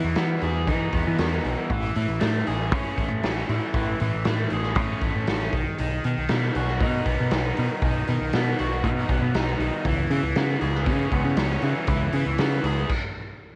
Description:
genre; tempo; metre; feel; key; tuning
indie rock; 118 BPM; 4/4; straight; unclear; A4 = 439 Hz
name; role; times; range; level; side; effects
crunchy overdriven guitar; riff; 0.0-12.9 s; D#3 to G#4; -30 LUFS; equal; cassette tape
growling picked electric bass; bass; 0.0-12.8 s; A1 to E3; -28 LUFS; equal; overdrive
raw garage drum kit; drums; 0.2-13.0 s; crash cymbal, hi-hat, kick drum, snare drum; -30 LUFS; equal; cassette tape
room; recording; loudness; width
light reverb; home recording on cassette; -24 LUFS; mono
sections
0.0-13.6 A section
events
stop 12.9-13.6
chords
0.0 Emaj7; 1.7 Amaj7; 5.5 B; 9.9 C#m7

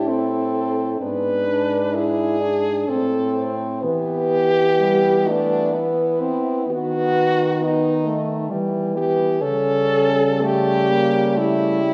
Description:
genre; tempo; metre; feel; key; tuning
classical, lyrical piece for horn quartet; 64 BPM; 3/4; uneven beats, rubato; unclear; A4 = 440 Hz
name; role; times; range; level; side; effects
warm French horn; melody; 0.0-11.9 s; D4 to B4; -23 LUFS; equal; none
mellow French horn; second line; 0.0-11.9 s; G3 to E4; -28 LUFS; equal; none
mellow French horn; accompaniment; 0.0-11.9 s; G3 to E4; -26 LUFS; equal; none
mellow French horn; bass; 0.0-11.9 s; G#2 to E3; -27 LUFS; equal; none
room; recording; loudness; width
moderate recital hall reverb, RT60 1.7 s; recorded in a church or concert hall; -20 LUFS; mono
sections
0.0-11.9 A section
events
none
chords
0.0 Am; 1.0 G#dim; 2.9 Am; 3.8 Em; 6.7 B/D#; 8.5 Em; 9.4 A7/C#

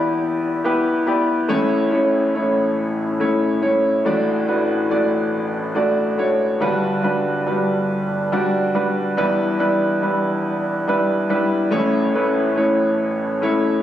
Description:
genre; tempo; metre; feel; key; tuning
folk; 47 BPM (dotted quarters); 6/8; straight; unclear; A4 = 437 Hz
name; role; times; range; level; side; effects
clear concert grand piano; solo; 0.0-13.8 s; G1 to D5; -17 LUFS; equal; none
room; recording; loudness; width
little or no reverb; recorded on a phone in the room, studio reverb, compression; -17 LUFS; side -11 dB against mid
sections
0.0-13.8 A section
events
none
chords
0.0 Em7; 1.5 A; 4.0 D/A; 6.6 Gmaj7; 9.2 Em7; 11.7 A

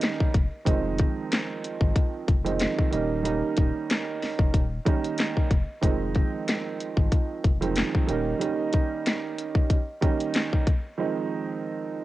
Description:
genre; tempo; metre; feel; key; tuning
hip hop, boom-bap hip-hop; 93 BPM; 4/4; swing 56% on 16ths; F minor; A4 = 439 Hz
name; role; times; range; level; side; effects
dark upright piano; accompaniment; 0.0-12.0 s; Eb3 to Eb4; -28 LUFS; right 5 dB; cassette tape, high-pass filter, low-pass filter
garage drum kit; drums; 0.0-10.8 s; hi-hat, kick drum, snare drum; -24 LUFS; left 1 dB; vintage 12-bit sampler grit, cassette tape
warm sub bass; bass; 0.3-8.3 s; Eb1 to Ab1; -30 LUFS; left 1 dB; transformer saturation
room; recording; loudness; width
light reverb, digital ambience; home recording on cassette; -23 LUFS; side -16 dB against mid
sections
0.0-12.0 A section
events
none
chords
0.0 Eb7; 0.7 Fm7; 2.9 Eb7; 5.8 Fm7; 8.1 Eb7; 11.0 Fm7

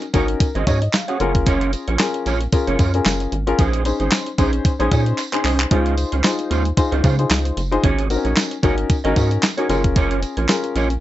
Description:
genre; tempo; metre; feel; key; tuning
early-eighties boogie funk; 113 BPM; 4/4; swing 56% on 16ths; unclear; A4 = 437 Hz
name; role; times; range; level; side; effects
dark grand piano; accompaniment; 0.0-10.9 s; C4 to Gb5; -22 LUFS; left 4 dB; none
mellow electric guitar; riff; 0.0-10.9 s; Ab3 to Eb5; -23 LUFS; right 5 dB; ensemble chorus
crisp 8-bit digital drum machine; drums; 0.0-11.0 s; handclaps, hi-hat, kick drum, snare drum; -19 LUFS; equal; none
rubbery square bass; bass; 0.1-11.0 s; Gb1 to Db3; -21 LUFS; equal; none
tambourine; percussion; 0.1-10.9 s; none; -34 LUFS; right 6 dB; none
room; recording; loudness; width
little or no reverb; nothing above 7.9 kHz; -16 LUFS; side -14 dB against mid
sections
0.0-11.0 A section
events
drum fill 5.2-5.7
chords
0.0 Ab7sus4; 1.2 Gbmaj7; 3.6 Bbm11; 5.7 Dbmaj7; 7.8 Ab7sus4; 9.7 Gbmaj7

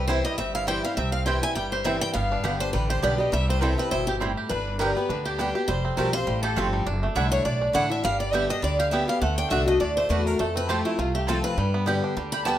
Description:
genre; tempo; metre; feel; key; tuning
bluegrass; 204 BPM; 4/4; swing 55% on 8ths; unclear; A4 = 438 Hz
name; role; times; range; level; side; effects
picked steel-string acoustic guitar; melody; 0.0-12.6 s; E4 to B5; -28 LUFS; equal; none
rich fiddle; second line; 0.0-12.6 s; E4 to B5; -35 LUFS; left 4 dB; none
picked steel-string acoustic guitar; accompaniment; 0.0-12.6 s; F2 to G4; -29 LUFS; left 2 dB; none
bluegrass banjo; arpeggios; 0.0-12.6 s; G3 to G4; -31 LUFS; right 3 dB; none
upright bass; bass; 0.0-12.6 s; F1 to G2; -28 LUFS; equal; none
mandolin; stabs; 0.1-12.6 s; A3 to A5; -31 LUFS; right 4 dB; none
room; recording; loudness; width
light reverb; close, detailed microphones; -22 LUFS; side -12 dB against mid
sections
0.0-4.5 A section; 4.5-12.6 B section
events
none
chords
0.0 C; 2.1 G; 3.3 C; 4.5 G; 5.7 Fadd9; 6.9 Dadd9/F#; 8.0 G; 9.2 D; 10.4 F; 11.6 G

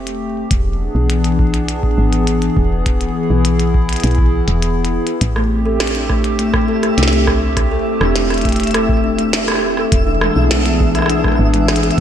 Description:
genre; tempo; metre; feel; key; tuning
IDM; 102 BPM; 4/4; straight; A minor; A4 = 443 Hz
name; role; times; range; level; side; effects
hollow soft pad; sustained chords; 0.0-12.0 s; E3 to G#4; -18 LUFS; left 1 dB; chorus
woody FM bass; bass; 0.0-12.0 s; E1 to C2; -18 LUFS; equal; tube saturation
glitchy drum kit; drums; 0.1-12.0 s; hi-hat, rim click, snare drum; -20 LUFS; equal; none
electronic kick drum; drums; 0.5-12.0 s; none; -18 LUFS; equal; none
twinkling granular texture; texture; 6.0-12.0 s; E4 to E5; -24 LUFS; left 1 dB; built-in reverb
kalimba; arpeggios; 5.4-11.9 s; G#3 to A4; -20 LUFS; equal; digital delay
room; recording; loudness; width
moderate lush hall reverb, RT60 2.1 s; big arena sound; -13 LUFS; side -10 dB against mid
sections
0.0-12.0 A section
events
none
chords
0.0 Am7; 0.5 E7; 5.2 Am7; 9.9 E7

